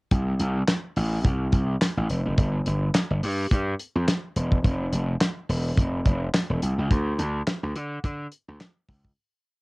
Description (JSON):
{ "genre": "early-eighties boogie funk", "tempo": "106 BPM", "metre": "4/4", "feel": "swing 56% on 16ths", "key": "unclear", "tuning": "A4 = 438 Hz", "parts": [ { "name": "gritty slap bass", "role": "bass", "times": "0.1-9.1 s", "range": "E1 to D3", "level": "-24 LUFS", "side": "equal", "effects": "overdrive" }, { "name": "damped 70s drum kit", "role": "drums", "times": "0.1-9.2 s", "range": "handclaps, hi-hat, kick drum, snare drum", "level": "-23 LUFS", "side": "equal", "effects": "cassette tape" } ], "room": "light reverb", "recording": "home recording on cassette", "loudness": "-22 LUFS", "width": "side -28 dB against mid", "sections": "0.1-9.2 verse", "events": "fade-out 6.9-9.2", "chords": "none" }